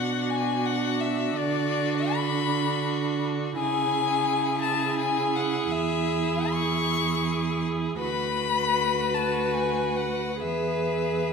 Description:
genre	classical, slow romantic movement for string quartet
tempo	63-87 BPM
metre	3/4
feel	rubato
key	unclear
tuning	A4 = 440 Hz
part	rich violin	melody	0.0-11.3 s	D5 to C#6	-28 LUFS	left 7 dB	none
part	rich violin	second line	0.0-11.3 s	F#4 to B4	-30 LUFS	left 1 dB	none
part	rich viola	accompaniment	0.0-11.3 s	D4 to G#4	-30 LUFS	right 4 dB	none
part	rich cello	bass	0.0-11.3 s	D2 to D3	-30 LUFS	right 5 dB	none
room	wet recital hall reverb, RT60 1.7 s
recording	none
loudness	-23 LUFS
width	side -5 dB against mid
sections	0.0-11.3 A section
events	none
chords	0.0 Bm; 1.4 Bm/D; 3.6 C#m; 5.7 C#m/E; 8.0 Bm/D; 10.4 E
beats	0.66 | 1.37 2.14 2.87 | 3.58 4.28 4.99 | 5.70 6.50 7.26 | 8.00 8.75 9.54 | 10.42

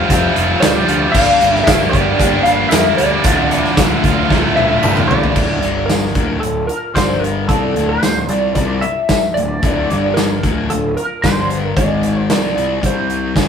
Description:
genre	classic rock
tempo	113 BPM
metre	4/4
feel	straight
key	D minor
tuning	A4 = 440 Hz
part	picked acoustic archtop guitar	accompaniment	0.0-13.5 s	G2 to D5	-28 LUFS	left 4 dB	none
part	sludgy distorted guitar	riff	0.0-13.5 s	D2 to G4	-20 LUFS	left 5 dB	overdrive
part	tight distorted guitar	riff	0.0-5.7 s	D2 to G4	-17 LUFS	right 4 dB	distortion
part	fuzz fingered electric bass	bass	0.1-13.5 s	D1 to F2	-22 LUFS	equal	overdrive
part	big rock drum kit	drums	0.1-13.5 s	crash cymbal, hi-hat, kick drum, snare drum, tambourine, toms	-17 LUFS	equal	none
part	lightly driven lead guitar	melody	0.6-13.3 s	A4 to F5	-18 LUFS	equal	wah
part	tambourine	percussion	0.6-5.0 s	none	-36 LUFS	left 4 dB	none
room	moderate stone room reverb, RT60 1.4 s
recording	rough rehearsal-room recording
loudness	-12 LUFS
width	side -7 dB against mid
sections	0.0-5.4 A section; 5.4-13.5 B section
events	drum fill 4.3-5.4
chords	0.0 Fadd9; 1.1 Gm; 3.2 Dm; 5.6 G5; 6.2 Dm; 7.0 G5; 7.5 Dm; 9.9 G5; 10.4 Dm; 11.2 G5; 11.8 G#5; 12.3 Dm; 12.8 C5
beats	0.09 0.62 | 1.14 1.67 2.19 2.72 | 3.25 3.77 4.30 4.83 | 5.36 5.89 6.43 6.96 | 7.49 8.03 8.56 9.10 | 9.63 10.16 10.70 11.23 | 11.76 12.30 12.83 13.36

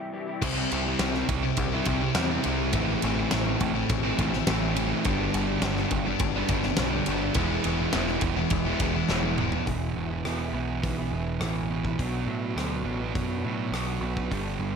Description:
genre	quiet-loud alternative rock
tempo	104 BPM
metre	4/4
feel	straight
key	unclear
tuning	A4 = 438 Hz
part	electric guitar through a small old amp	arpeggios	0.0-0.4, 9.7-14.8 s	E2 to G#4	-35 LUFS	left 4 dB	ensemble chorus, digital delay
part	overdriven electric guitar	riff	0.4-9.7 s	G2 to E4	-29 LUFS	left 19 dB	none
part	thick fuzz guitar	riff	0.4-14.8 s	E2 to E4	-29 LUFS	right 9 dB	distortion
part	growling picked electric bass	bass	0.4-14.8 s	E1 to A2	-32 LUFS	left 1 dB	overdrive
part	big rock drum kit	drums	0.4-14.5 s	crash cymbal, hi-hat, kick drum, ride cymbal, rim click, snare drum, toms	-30 LUFS	left 1 dB	none
room	little or no reverb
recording	none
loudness	-24 LUFS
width	side -6 dB against mid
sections	0.4-9.7 A section; 9.7-14.8 B section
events	break 0.0-0.4; drum fill 9.1-9.7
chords	0.4 C; 2.8 Am; 5.1 G; 7.4 E; 12.0 Bm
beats	| 0.43 1.01 1.59 2.17 | 2.75 3.33 3.91 4.49 | 5.06 5.64 6.22 6.79 | 7.37 7.95 8.53 9.10 | 9.68 10.26 10.84 11.42 | 12.00 12.58 13.16 13.74 | 14.32

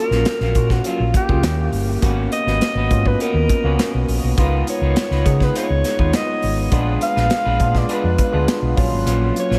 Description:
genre	polished 1980s jazz-funk pop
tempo	102 BPM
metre	4/4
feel	straight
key	G# dorian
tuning	A4 = 440 Hz
part	breathy alto saxophone	melody	0.0-9.6 s	E#4 to E#5	-25 LUFS	equal	none
part	overdriven tine electric piano	accompaniment	0.0-9.6 s	F#3 to G#4	-26 LUFS	equal	lush chorus
part	electric guitar through a small old amp	riff	0.1-9.6 s	F#3 to B4	-32 LUFS	equal	subtle chorus
part	hollow-body short-scale fingered electric bass	bass	0.1-9.6 s	G1 to C#3	-22 LUFS	equal	none
part	modern studio drum kit	drums	0.1-9.6 s	hi-hat, kick drum, snare drum	-24 LUFS	equal	none
room	moderate huge ambient reverb, RT60 7.7 s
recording	dreamy mix soaked in reverb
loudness	-18 LUFS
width	mono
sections	0.0-9.6 A section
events	none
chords	0.0 G#9sus4 (rootless); 1.4 D#7b9; 2.0 G#m11; 4.4 C#9; 6.7 A#7b9; 8.8 G#13sus4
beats	0.27 0.85 1.44 | 2.03 2.62 3.20 3.79 | 4.38 4.96 5.55 6.13 | 6.72 7.31 7.89 8.48 | 9.06

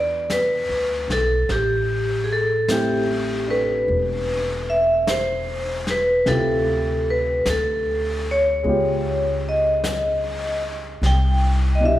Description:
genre	jazz ballad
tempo	50 BPM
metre	4/4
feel	swing 67% on 8ths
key	unclear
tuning	A4 = 443 Hz
part	vibraphone with medium hard mallets	melody	0.0-12.0 s	G4 to G5	-21 LUFS	equal	none
part	warm baby grand piano	accompaniment	0.0-12.0 s	B2 to B4	-27 LUFS	equal	none
part	upright bass	bass	0.0-12.0 s	E1 to E2	-25 LUFS	equal	none
part	vintage brush drum kit	drums	0.3-12.0 s	brushed snare drum, hi-hat, snare drum	-31 LUFS	left 1 dB	none
room	moderate concert hall reverb, RT60 2.1 s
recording	recorded in a church or concert hall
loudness	-19 LUFS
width	side -14 dB against mid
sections	0.0-12.0 A section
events	none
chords	0.0 E5; 1.5 Am9; 6.3 Dm11; 8.7 Db7#11; 11.0 Cmaj9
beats	0.30 | 1.50 2.69 3.89 5.08 | 6.28 7.47 8.66 9.85 | 11.04

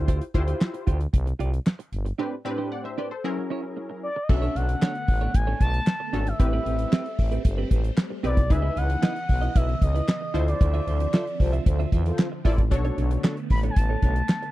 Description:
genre	early-eighties boogie funk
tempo	114 BPM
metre	4/4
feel	straight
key	unclear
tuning	A4 = 437 Hz
part	funky polysynth comp	accompaniment	0.0-13.4 s	A2 to F#5	-31 LUFS	left 2 dB	chorus
part	growling FM bass	bass	0.0-14.2 s	G1 to E2	-25 LUFS	equal	none
part	clean electric guitar	riff	0.1-14.5 s	C4 to E5	-33 LUFS	right 8 dB	lush chorus
part	damped 70s drum kit	drums	0.1-14.5 s	crash cymbal, handclaps, hi-hat, kick drum, snare drum	-21 LUFS	equal	none
part	expressive portamento lead	melody	4.0-14.5 s	D5 to B5	-30 LUFS	equal	chorus, slapback echo
part	phased string machine	sustained chords	4.3-14.5 s	C#3 to E5	-36 LUFS	equal	ensemble chorus, phaser
part	mellow synth brass	second line	11.1-12.3 s	F4 to C5	-32 LUFS	left 2 dB	chorus
room	little or no reverb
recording	dry, close 1970s-style studio recording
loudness	-22 LUFS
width	side -16 dB against mid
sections	0.0-4.3 A section; 4.3-14.5 B section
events	break 2.2-4.3; band accent 10.6-12.7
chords	0.0 Dm11; 2.2 Am11; 3.2 F#7; 4.3 Bm9; 6.4 Am9; 8.5 C#m9; 10.3 Dm9; 12.7 Bm9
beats	| 0.08 0.61 1.14 1.66 | 2.19 2.71 3.24 3.77 | 4.29 4.82 5.35 5.87 | 6.40 6.93 7.45 7.98 | 8.51 9.03 9.56 10.08 | 10.61 11.14 11.66 12.19 | 12.71 13.24 13.77 14.29

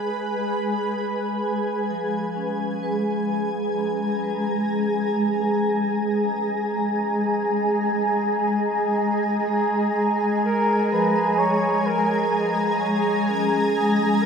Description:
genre	ambient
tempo	63 BPM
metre	4/4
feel	straight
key	G# dorian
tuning	A4 = 440 Hz
part	shimmering ambient pad	sustained chords	0.0-14.3 s	G#3 to A#5	-21 LUFS	equal	chorus, built-in reverb
part	vibraphone with medium hard mallets	arpeggios	0.5-14.3 s	E#3 to G#5	-31 LUFS	left 2 dB	diffuse ambient delay
part	clear flugelhorn	melody	10.5-14.3 s	Ab4 to C#5	-26 LUFS	equal	diffuse ambient delay
room	wet lush hall reverb, RT60 2.8 s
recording	dreamy mix soaked in reverb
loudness	-20 LUFS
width	side -6 dB against mid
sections	0.0-14.3 A section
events	fade-in on vibraphone 0.0-14.3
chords	0.0 G#m; 10.4 Fmadd11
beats	0.02 0.96 1.90 | 2.84 3.78 4.71 5.65 | 6.60 7.55 8.51 9.47 | 10.44 11.41 12.36 13.31 | 14.25

